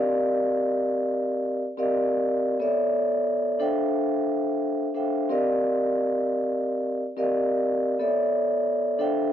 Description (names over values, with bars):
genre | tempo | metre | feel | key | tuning
hip hop | 89 BPM | 4/4 | swing 57% on 16ths | C dorian | A4 = 440 Hz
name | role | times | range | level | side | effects
vibraphone with soft mallets | solo | 0.0-9.3 s | B3 to G5 | -22 LUFS | equal | high-pass filter, low-pass filter
room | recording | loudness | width
moderate echo chamber reverb, RT60 1.6 s | dry, gritty hardware recording | -22 LUFS | side -10 dB against mid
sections
0.0-9.3 A section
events
none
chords
0.0 Cm11; 2.6 Bm11; 3.6 Dm11; 5.3 Cm11; 8.0 Bm11